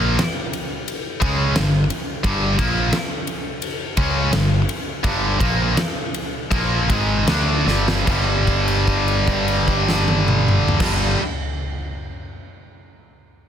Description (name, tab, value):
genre	hard rock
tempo	75-88 BPM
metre	4/4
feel	straight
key	G phrygian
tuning	A4 = 440 Hz
part	heavy high-gain guitar	riff	0.0-11.2 s	G2 to D4	-19 LUFS	equal	distortion
part	growling fingered electric bass	bass	0.0-11.1 s	G1 to D2	-22 LUFS	equal	overdrive
part	huge arena drum kit	drums	0.2-11.0 s	crash cymbal, kick drum, ride cymbal, snare drum, toms	-23 LUFS	equal	none
room	light reverb, small room ambience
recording	dense, heavily limited modern master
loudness	-17 LUFS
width	side -9 dB against mid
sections	0.0-8.1 A section; 8.1-11.3 B section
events	slowing down 2.2-8.1; drum fill 7.7-8.1; held note 8.1-10.8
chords	0.0 Gm; 8.1 G5